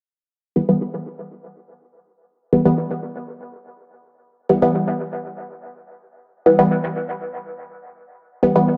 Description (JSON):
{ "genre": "techno", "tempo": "free time", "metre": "none", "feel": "none", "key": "E minor", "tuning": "A4 = 440 Hz", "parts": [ { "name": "filtered dub chord stab", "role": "stabs", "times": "0.6-8.8 s", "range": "E3 to B3", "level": "-19 LUFS", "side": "equal", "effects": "chorus, phaser, dub echo" } ], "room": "wet spring reverb, RT60 1.4 s", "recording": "echo-heavy mix", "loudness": "-20 LUFS", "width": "mono", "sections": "0.3-8.8 A section", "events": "filter sweep on synth stab 0.3-8.8", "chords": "0.3 Em", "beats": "free time" }